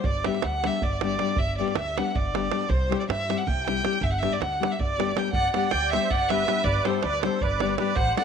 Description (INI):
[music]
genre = balkan folk, Balkan wedding band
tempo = 318 BPM (eighths)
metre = 7/8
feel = straight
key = G major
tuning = A4 = 439 Hz
[part]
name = warm violin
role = melody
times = 0.0-8.2 s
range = C5 to G5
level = -26 LUFS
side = right 1 dB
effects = none
[part]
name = upright bass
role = bass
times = 0.0-8.1 s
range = G1 to G2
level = -31 LUFS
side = equal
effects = none
[part]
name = davul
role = percussion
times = 0.0-8.2 s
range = none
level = -29 LUFS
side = right 4 dB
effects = none
[part]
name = nylon-string guitar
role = accompaniment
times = 0.3-8.2 s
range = G3 to A4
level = -29 LUFS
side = left 12 dB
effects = none
[part]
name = musette accordion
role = second line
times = 5.3-8.2 s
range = A4 to D5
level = -32 LUFS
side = right 11 dB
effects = none
[sound]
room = moderate plate reverb, RT60 2.6 s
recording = 1960s-style stereo with parts hard left and right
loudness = -22 LUFS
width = side -7 dB against mid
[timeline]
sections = 0.0-5.3 A section; 5.3-8.2 B section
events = none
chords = 0.0 G; 2.7 C; 4.0 G